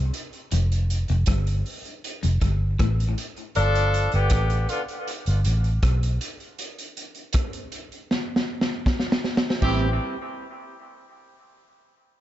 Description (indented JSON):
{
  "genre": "dub reggae",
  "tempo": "79 BPM",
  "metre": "4/4",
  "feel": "straight",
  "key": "A minor",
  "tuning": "A4 = 440 Hz",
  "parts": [
    { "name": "vintage muted fingered electric bass", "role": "bass", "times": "0.0-10.0 s", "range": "F1 to B1", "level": "-22 LUFS", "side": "equal", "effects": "none" },
    { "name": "vintage drum kit", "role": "drums", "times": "0.1-9.8 s", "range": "crash cymbal, hi-hat, kick drum, rim click, snare drum", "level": "-26 LUFS", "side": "equal", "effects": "none" },
    { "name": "clean electric guitar", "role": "riff", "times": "0.5-3.0 s", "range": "F2 to A2", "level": "-32 LUFS", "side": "left 6 dB", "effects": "lush chorus, dub echo" },
    { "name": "clear horn section", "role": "second line", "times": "3.6-4.8, 9.6-9.9 s", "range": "D3 to A4", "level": "-27 LUFS", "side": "left 1 dB", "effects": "dub echo" },
    { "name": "mellow electric guitar", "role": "accompaniment", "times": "9.6-9.9 s", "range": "G3 to G4", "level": "-30 LUFS", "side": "right 4 dB", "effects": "dub echo" }
  ],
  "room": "light reverb, studio reverb",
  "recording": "nothing above 7.7 kHz",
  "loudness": "-21 LUFS",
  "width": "side -13 dB against mid",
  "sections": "0.0-9.6 A section; 9.6-12.2 B section",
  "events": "break 0.0-9.6; drum fill 8.1-9.6",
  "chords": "0.0 N.C.; 0.5 F; 3.6 G7; 6.6 N.C.; 9.6 Am7"
}